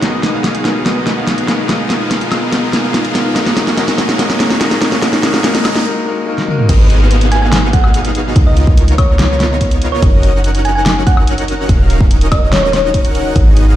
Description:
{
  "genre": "future bass",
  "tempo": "144 BPM",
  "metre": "4/4",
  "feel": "half-time",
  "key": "G# dorian",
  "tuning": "A4 = 439 Hz",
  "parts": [
    { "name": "clear concert grand piano", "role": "accompaniment", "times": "0.0-6.7 s", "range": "G#3 to A#4", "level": "-21 LUFS", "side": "left 3 dB", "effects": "sidechain pumping, ping-pong delay" },
    { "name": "dark chamber string section", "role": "sustained chords", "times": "0.0-5.8 s", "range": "B3 to D#6", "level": "-29 LUFS", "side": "left 1 dB", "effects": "none" },
    { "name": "dense compressed supersaw", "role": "riff", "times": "0.0-13.8 s", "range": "A#3 to F#5", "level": "-18 LUFS", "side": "equal", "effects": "sidechain pumping, low-pass filter" },
    { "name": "warm 808-style bass", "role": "bass", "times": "0.0-13.8 s", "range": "D#1 to C#2", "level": "-13 LUFS", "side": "equal", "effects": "sidechain pumping, high-pass filter" },
    { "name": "pop drum kit", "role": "drums", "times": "0.0-13.7 s", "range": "crash cymbal, hi-hat, snare drum, toms, woodblock", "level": "-16 LUFS", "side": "equal", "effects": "studio reverb" },
    { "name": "riser and downlifter", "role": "sound effects", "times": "0.0-10.0 s", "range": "none", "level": "-23 LUFS", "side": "right 1 dB", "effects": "none" },
    { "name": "electronic kick drum", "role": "drums", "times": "6.7-13.4 s", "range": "none", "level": "-11 LUFS", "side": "equal", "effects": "studio reverb" },
    { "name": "thumb-piano-like synth pluck", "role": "melody", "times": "7.3-13.3 s", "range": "C#5 to G#5", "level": "-19 LUFS", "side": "equal", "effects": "chorus, sidechain pumping, ping-pong delay" }
  ],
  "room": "little or no reverb",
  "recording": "played on a big sound system in a bare room, stone room reverb",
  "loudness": "-10 LUFS",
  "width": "side -12 dB against mid",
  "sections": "0.0-6.7 A section; 6.7-13.8 B section",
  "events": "build-up 0.0-6.7; drum fill 0.0-5.9, 6.4-6.7; riser 0.0-5.9; break 5.9-6.7; drop 6.7-13.8",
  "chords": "0.0 G#m7; 1.7 C#13; 3.4 F#6; 5.0 D#m7; 6.7 G#m7; 8.4 C#13; 10.0 F#6; 11.7 D#m7"
}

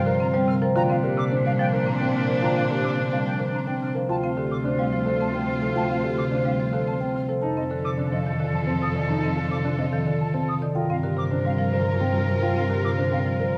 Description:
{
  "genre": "classical, minimalist pattern music",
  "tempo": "108 BPM",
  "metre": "3/4",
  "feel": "straight",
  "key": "G minor",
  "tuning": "A4 = 439 Hz",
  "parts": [
    { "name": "marimba with soft mallets", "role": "melody", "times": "0.0-13.6 s", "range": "G4 to A5", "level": "-32 LUFS", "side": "equal", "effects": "none" },
    { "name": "bright oboe", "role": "second line", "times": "0.0-13.6 s", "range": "D4 to Bb4", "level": "-36 LUFS", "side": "equal", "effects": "none" },
    { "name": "marimba with medium hard mallets", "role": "accompaniment", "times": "0.0-13.6 s", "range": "C3 to C4", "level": "-28 LUFS", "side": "equal", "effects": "none" },
    { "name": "warm symphonic violin section", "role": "sustained chords", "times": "0.0-13.6 s", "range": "D4 to C5", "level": "-36 LUFS", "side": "equal", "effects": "none" },
    { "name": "warm cello", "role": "bass", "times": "0.0-13.6 s", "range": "D2 to Bb2", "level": "-32 LUFS", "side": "equal", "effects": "none" },
    { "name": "dark concert grand piano", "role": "arpeggios", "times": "0.1-13.6 s", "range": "C4 to Bb4", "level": "-33 LUFS", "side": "equal", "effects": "none" },
    { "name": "silver concert flute", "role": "arpeggios", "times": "0.2-13.6 s", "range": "Eb5 to F6", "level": "-37 LUFS", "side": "equal", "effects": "none" }
  ],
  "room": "wet recital hall reverb, RT60 1.8 s",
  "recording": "dark, warm production",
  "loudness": "-24 LUFS",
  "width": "mono",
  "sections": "0.0-13.6 A section",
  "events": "none",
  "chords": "0.0 Gm7; 0.8 Bbadd9; 4.1 Dm7; 7.4 F7; 10.8 Gm7"
}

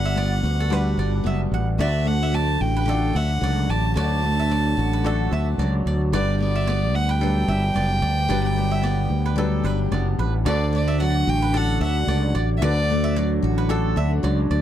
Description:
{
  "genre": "acoustic pop",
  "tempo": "111 BPM",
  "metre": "4/4",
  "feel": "swing 55% on 16ths",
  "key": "D major",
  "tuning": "A4 = 440 Hz",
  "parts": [
    { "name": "rich violin", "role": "melody", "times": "0.0-13.2 s", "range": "D5 to A5", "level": "-27 LUFS", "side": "right 1 dB", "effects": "none" },
    { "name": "bright upright piano", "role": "accompaniment", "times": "0.0-14.6 s", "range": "F#3 to D5", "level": "-33 LUFS", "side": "left 6 dB", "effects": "none" },
    { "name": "picked steel-string acoustic guitar", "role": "accompaniment", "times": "0.0-14.6 s", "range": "D3 to F#4", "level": "-26 LUFS", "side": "equal", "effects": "double-tracked left and right" },
    { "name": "fretless electric bass", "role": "bass", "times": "0.0-14.6 s", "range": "F#1 to D2", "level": "-22 LUFS", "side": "equal", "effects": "none" },
    { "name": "mandolin", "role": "arpeggios", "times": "0.1-14.6 s", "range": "A4 to F#5", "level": "-33 LUFS", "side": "right 5 dB", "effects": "none" }
  ],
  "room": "little or no reverb",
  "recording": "dry, close 1970s-style studio recording",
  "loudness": "-19 LUFS",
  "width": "side -11 dB against mid",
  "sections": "0.0-10.5 A section; 10.5-14.6 A section",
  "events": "none",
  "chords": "0.0 Gmaj7; 1.8 D; 6.1 Gmaj7; 10.5 D"
}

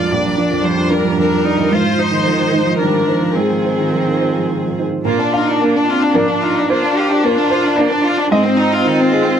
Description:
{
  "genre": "neoclassical piano and strings",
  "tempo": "111 BPM",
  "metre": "3/4",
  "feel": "rubato",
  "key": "unclear",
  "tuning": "A4 = 440 Hz",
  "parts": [
    { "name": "rich chamber violin section", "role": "melody", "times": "0.0-9.4 s", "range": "Ab3 to D5", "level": "-18 LUFS", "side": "left 3 dB", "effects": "none" },
    { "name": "rich cello", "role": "second line", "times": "0.0-9.4 s", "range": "Eb3 to G4", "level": "-21 LUFS", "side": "right 3 dB", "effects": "none" },
    { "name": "rich viola", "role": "accompaniment", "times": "0.0-9.4 s", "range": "C4 to F4", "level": "-20 LUFS", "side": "equal", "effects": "none" },
    { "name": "warm upright piano", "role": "accompaniment", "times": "0.0-9.4 s", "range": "Bb1 to F5", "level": "-18 LUFS", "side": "right 3 dB", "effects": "none" },
    { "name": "warm analog pad", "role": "sustained chords", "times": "0.0-9.4 s", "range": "Eb3 to C5", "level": "-25 LUFS", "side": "equal", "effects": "none" }
  ],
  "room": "light reverb",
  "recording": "close, detailed microphones",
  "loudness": "-13 LUFS",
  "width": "side -8 dB against mid",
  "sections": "0.0-5.1 A section; 5.1-9.4 B section",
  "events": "none",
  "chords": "0.0 Bb; 1.7 Fm7/Ab; 5.1 Bb; 8.3 Fm7/Ab"
}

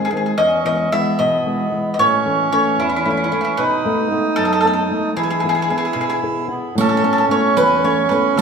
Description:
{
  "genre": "italian folk, Italian serenade",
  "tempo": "75 BPM (dotted quarters)",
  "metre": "6/8",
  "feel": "straight",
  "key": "E major",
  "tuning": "A4 = 443 Hz",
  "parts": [
    { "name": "bowl-back mandolin", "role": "melody", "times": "0.0-8.4 s", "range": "E4 to E5", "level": "-18 LUFS", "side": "equal", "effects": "none" },
    { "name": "flamenco guitar", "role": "accompaniment", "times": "0.0-8.4 s", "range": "E2 to G#4", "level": "-21 LUFS", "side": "left 3 dB", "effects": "none" },
    { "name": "accordion", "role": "second line", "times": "0.4-8.4 s", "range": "B3 to E4", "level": "-20 LUFS", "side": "right 7 dB", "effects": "none" },
    { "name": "riq", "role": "percussion", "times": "6.8-8.4 s", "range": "none", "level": "-23 LUFS", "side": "right 3 dB", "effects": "none" }
  ],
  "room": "wet concert hall reverb, RT60 2.3 s",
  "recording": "minimal, uncompressed stereo recording",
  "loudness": "-15 LUFS",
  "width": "side -6 dB against mid",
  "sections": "0.0-6.8 A section; 6.8-8.4 B section",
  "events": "none",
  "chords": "0.4 E; 2.0 A; 3.6 B7; 5.2 E; 6.8 Aadd9"
}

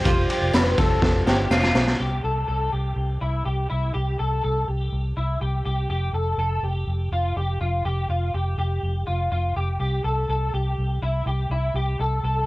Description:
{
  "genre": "jangly indie pop",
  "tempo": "123 BPM",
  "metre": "4/4",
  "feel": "straight",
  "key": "C major",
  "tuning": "A4 = 440 Hz",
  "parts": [
    { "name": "dark upright piano", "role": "melody", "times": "0.0-1.5 s", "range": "C5", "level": "-35 LUFS", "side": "right 1 dB", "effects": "none" },
    { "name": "chorused retro synth keys", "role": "accompaniment", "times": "0.0-2.0 s", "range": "F4 to C5", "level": "-29 LUFS", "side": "right 1 dB", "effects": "cassette tape" },
    { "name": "warm analog pad", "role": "sustained chords", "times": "0.0-2.0 s", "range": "F3 to G4", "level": "-36 LUFS", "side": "right 2 dB", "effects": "none" },
    { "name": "electric guitar through a small old amp", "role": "arpeggios", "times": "0.0-12.5 s", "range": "E4 to B4", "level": "-26 LUFS", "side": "left 1 dB", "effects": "ensemble chorus, cassette tape" },
    { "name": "vintage muted fingered electric bass", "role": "bass", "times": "0.0-12.4 s", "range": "F1 to C2", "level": "-24 LUFS", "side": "equal", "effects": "none" },
    { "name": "tambourine", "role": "percussion", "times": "0.0-1.9 s", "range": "none", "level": "-43 LUFS", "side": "right 5 dB", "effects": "none" },
    { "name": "raw garage drum kit", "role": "drums", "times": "0.1-2.0 s", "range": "hi-hat, kick drum, ride cymbal, snare drum", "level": "-21 LUFS", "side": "equal", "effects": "cassette tape" }
  ],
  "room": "little or no reverb",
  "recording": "home recording on cassette",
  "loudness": "-21 LUFS",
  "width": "side -19 dB against mid",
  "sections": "0.0-2.0 A section; 2.0-12.5 B section",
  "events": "drum fill 1.0-2.0",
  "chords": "0.0 Fsus2; 2.0 C; 5.9 Fsus2; 9.8 C"
}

